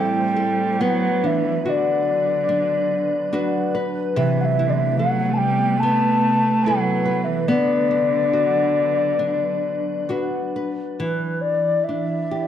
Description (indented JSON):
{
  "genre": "celtic folk, Celtic slow air",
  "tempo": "71 BPM",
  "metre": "4/4",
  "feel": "uneven beats, rubato",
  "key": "unclear",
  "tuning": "A4 = 441 Hz",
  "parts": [
    { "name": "mellow hollow baroque flute", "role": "melody", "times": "0.0-12.5 s", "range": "B4 to A5", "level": "-21 LUFS", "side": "left 2 dB", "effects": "none" },
    { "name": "warm cello", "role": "second line", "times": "0.0-10.1 s", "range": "D3 to A3", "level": "-25 LUFS", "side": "right 5 dB", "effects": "none" },
    { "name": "nylon-string guitar", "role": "accompaniment", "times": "0.0-12.5 s", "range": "A2 to B4", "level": "-24 LUFS", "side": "left 2 dB", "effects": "none" },
    { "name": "soft additive organ-like pad", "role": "sustained chords", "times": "0.0-12.5 s", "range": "C3 to D5", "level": "-29 LUFS", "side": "right 2 dB", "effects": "ensemble chorus, built-in reverb" }
  ],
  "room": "moderate scoring stage reverb, RT60 1.6 s",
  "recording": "dark, warm production",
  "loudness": "-18 LUFS",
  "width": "side -10 dB against mid",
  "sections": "0.0-11.0 A section; 11.0-12.5 B section",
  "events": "none",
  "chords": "0.0 Am; 0.8 Bm; 4.2 Amadd9/C; 7.5 Bm; 11.0 E7(no3)"
}